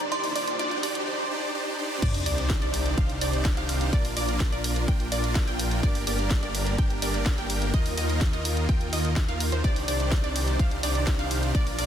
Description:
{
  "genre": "EDM, festival progressive house",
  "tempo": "126 BPM",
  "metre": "4/4",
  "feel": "straight",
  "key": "C minor",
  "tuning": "A4 = 441 Hz",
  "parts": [
    { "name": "glassy synth bell", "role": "melody", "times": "0.0-1.1 s", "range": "C6", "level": "-33 LUFS", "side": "right 2 dB", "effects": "chorus, digital delay" },
    { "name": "lush unison pad", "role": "sustained chords", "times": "0.0-11.9 s", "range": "Eb2 to D5", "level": "-38 LUFS", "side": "right 1 dB", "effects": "chorus, sidechain pumping" },
    { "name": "wide unison pluck", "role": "arpeggios", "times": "0.0-11.9 s", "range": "C5 to G5", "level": "-34 LUFS", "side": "right 1 dB", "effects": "sidechain pumping, digital delay" },
    { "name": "supersaw chords", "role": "riff", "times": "0.0-11.9 s", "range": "Bb3 to G5", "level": "-30 LUFS", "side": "right 1 dB", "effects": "sidechain pumping, digital delay" },
    { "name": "house drum kit", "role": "drums", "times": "0.0-11.9 s", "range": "crash cymbal, hi-hat, snare drum", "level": "-33 LUFS", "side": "equal", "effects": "none" },
    { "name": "riser and sub drop", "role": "sound effects", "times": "0.0-3.9 s", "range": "none", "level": "-35 LUFS", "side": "equal", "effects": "none" },
    { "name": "wide detuned saw bass", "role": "bass", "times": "2.0-11.9 s", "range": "G1 to Eb2", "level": "-29 LUFS", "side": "equal", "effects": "chorus, sidechain pumping" },
    { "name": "electronic kick drum", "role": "drums", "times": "2.0-11.6 s", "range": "none", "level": "-25 LUFS", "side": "equal", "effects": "none" }
  ],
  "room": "light reverb",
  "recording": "dense, heavily limited modern master, high-pass filter",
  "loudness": "-23 LUFS",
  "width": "side -9 dB against mid",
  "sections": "0.0-2.0 A section; 2.0-11.9 B section",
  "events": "build-up 0.0-2.0; riser 0.0-1.1; drop 2.0-11.9; impact 2.0-3.9",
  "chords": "0.1 Ebsus2; 2.0 Cmadd9; 3.9 Bb; 5.8 Gm; 7.7 Ebsus2; 9.6 Cmadd9",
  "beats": "| 0.12 0.59 1.07 1.55 | 2.02 2.50 2.98 3.45 | 3.93 4.40 4.88 5.36 | 5.83 6.31 6.79 7.26 | 7.74 8.21 8.69 9.17 | 9.64 10.12 10.60 11.07 | 11.55"
}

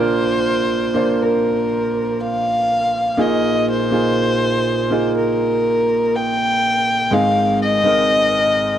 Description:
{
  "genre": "pop",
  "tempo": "61 BPM",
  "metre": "4/4",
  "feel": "straight",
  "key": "unclear",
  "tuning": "A4 = 440 Hz",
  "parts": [
    { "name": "dark violin", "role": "melody", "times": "0.0-8.8 s", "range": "Bb4 to G5", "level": "-18 LUFS", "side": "left 1 dB", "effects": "none" },
    { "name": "warm baby grand piano", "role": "accompaniment", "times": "0.0-8.8 s", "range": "Ab1 to C5", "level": "-18 LUFS", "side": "right 2 dB", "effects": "none" }
  ],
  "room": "moderate booth ambience, RT60 0.2 s",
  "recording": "dry, close 1970s-style studio recording",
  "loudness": "-15 LUFS",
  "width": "side -10 dB against mid",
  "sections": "0.0-8.8 A section",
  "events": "none",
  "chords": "0.0 Bb; 3.2 Bb7sus4; 7.1 Ab",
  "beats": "0.22 1.20 2.19 | 3.18 4.17 5.16 6.14 | 7.11 8.09"
}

